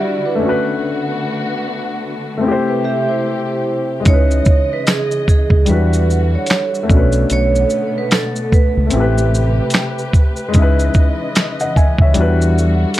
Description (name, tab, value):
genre	lo-fi hip hop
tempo	74 BPM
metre	4/4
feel	swing 60% on 16ths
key	unclear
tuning	A4 = 440 Hz
part	vibraphone with medium mallets	second line	0.0-4.0 s	D4 to E5	-21 LUFS	right 3 dB	low-pass filter, tape echo, plate reverb
part	dark upright piano	accompaniment	0.0-13.0 s	G3 to G#5	-20 LUFS	left 4 dB	cassette tape, low-pass filter, plate reverb
part	dark symphonic string section	sustained chords	0.0-13.0 s	B2 to D#5	-23 LUFS	left 1 dB	low-pass filter, plate reverb
part	vibraphone with medium hard mallets	melody	4.1-9.9 s	G#4 to C#5	-20 LUFS	right 6 dB	low-pass filter, tape echo
part	deep dub fingered electric bass	bass	4.1-12.8 s	A1 to E2	-15 LUFS	equal	none
part	lo-fi sampler-style drum kit	drums	4.1-13.0 s	handclaps, hi-hat, kick drum, shaker, snare drum	-13 LUFS	equal	none
part	tambourine	percussion	4.9-11.6 s	none	-29 LUFS	right 6 dB	none
room	light reverb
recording	none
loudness	-13 LUFS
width	side -14 dB against mid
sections	0.0-13.0 A section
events	none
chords	0.4 Bm9; 2.4 Am7; 4.1 C#m9; 5.7 Em9; 6.9 Bm9; 8.9 Am9; 10.5 C#m9; 12.2 Em9